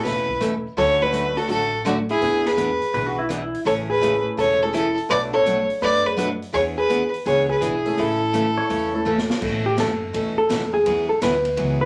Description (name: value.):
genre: country, western swing.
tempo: 167 BPM.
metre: 4/4.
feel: swing 66% on 8ths.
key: A major.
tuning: A4 = 441 Hz.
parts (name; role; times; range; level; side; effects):
clear fiddle; melody; 0.0-9.1 s; F#4 to D5; -24 LUFS; equal; none.
hollow-body jazz guitar; second line; 0.0-11.9 s; D4 to B4; -26 LUFS; equal; none.
clear upright piano; accompaniment; 0.0-5.7, 7.9-9.1 s; A3 to A4; -33 LUFS; equal; none.
picked steel-string acoustic guitar; accompaniment; 0.0-11.8 s; B2 to A4; -29 LUFS; equal; none.
upright bass; bass; 0.1-11.9 s; E1 to A2; -34 LUFS; equal; none.
swinging big-band drum kit; drums; 0.1-11.7 s; crash cymbal, hi-hat, kick drum, ride cymbal, rim click, snare drum; -34 LUFS; equal; none.
pedal steel guitar; second line; 2.9-3.6, 8.6-9.3 s; E4 to C#5; -30 LUFS; equal; none.
room: wet club reverb, RT60 0.5 s.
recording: none.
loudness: -21 LUFS.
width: mono.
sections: 0.0-9.4 A section; 9.4-11.9 B section.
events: drum fill 9.1-9.4; hollow-body jazz guitar solo 9.4-11.9.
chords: 0.0 Aadd9; 0.8 Dmaj7; 2.2 E7; 3.7 Amaj7; 5.1 Bm7; 6.5 E7; 8.0 A; 9.4 Aadd9; 10.9 Eadd9.